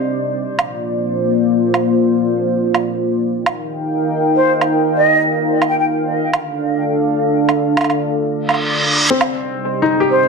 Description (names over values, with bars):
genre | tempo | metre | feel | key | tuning
half-time drum and bass | 167 BPM | 4/4 | swing 59% on 16ths, half-time | unclear | A4 = 441 Hz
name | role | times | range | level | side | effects
dark analog pad | sustained chords | 0.0-10.3 s | Bb3 to G5 | -16 LUFS | equal | chorus, vintage 12-bit sampler grit
woodblock | drums | 0.6-9.3 s | none | -19 LUFS | right 3 dB | overdrive
mellow concert flute | melody | 4.4-5.8, 10.1-10.3 s | C5 to G5 | -18 LUFS | right 1 dB | dub echo
reverse cymbal | sound effects | 8.5-9.1 s | none | -16 LUFS | right 1 dB | none
felt-muted upright piano | arpeggios | 9.1-10.3 s | C4 to G4 | -16 LUFS | left 3 dB | dub echo
room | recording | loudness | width
moderate digital room reverb, RT60 1.0 s | dense, heavily limited modern master | -14 LUFS | side -4 dB against mid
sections
0.0-10.3 A section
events
reverse cymbal 8.5-9.1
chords
0.5 Bbadd9; 3.4 Eb; 6.2 Dm; 9.1 Cm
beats
0.12 | 0.48 0.84 1.20 1.56 | 1.92 2.28 2.64 3.00 | 3.36 3.72 4.08 4.43 | 4.79 5.15 5.51 5.87 | 6.23 6.59 6.95 7.31 | 7.67 8.03 8.39 8.75 | 9.11 9.46 9.82 10.18